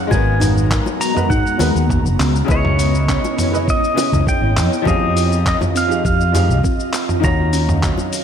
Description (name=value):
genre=sunset chillout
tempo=101 BPM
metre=4/4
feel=straight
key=unclear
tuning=A4 = 440 Hz
part: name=pedal steel guitar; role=melody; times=0.0-8.2 s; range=Db5 to Bb5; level=-22 LUFS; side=equal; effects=tape echo
part: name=ethereal airy pad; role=sustained chords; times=0.0-8.2 s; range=Gb3 to Bb5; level=-23 LUFS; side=equal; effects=ensemble chorus, built-in reverb, tremolo
part: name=kalimba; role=arpeggios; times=0.0-8.1 s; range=C4 to Bb4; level=-26 LUFS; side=right 3 dB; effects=tape echo
part: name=clear baby grand piano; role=accompaniment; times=0.1-8.2 s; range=Db3 to F5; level=-24 LUFS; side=moving between left 8 dB and right 5 dB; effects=auto-pan, tape echo
part: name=fretless electric bass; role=bass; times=0.1-7.9 s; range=Gb1 to Ab2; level=-17 LUFS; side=equal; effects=none
part: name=dusty soul sampler-style drum kit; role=drums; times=0.1-8.2 s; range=handclaps, hi-hat, shaker, toms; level=-22 LUFS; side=equal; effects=none
part: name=electronic kick drum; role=drums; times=0.1-8.0 s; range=none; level=-20 LUFS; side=equal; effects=none
part: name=bongos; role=percussion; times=0.1-8.1 s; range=none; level=-27 LUFS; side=left 5 dB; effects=none
room=light reverb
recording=none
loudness=-14 LUFS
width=side -8 dB against mid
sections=0.0-8.2 A section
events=none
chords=0.0 Abm9; 2.2 Dbm9; 4.6 Fm9; 7.2 Ebm9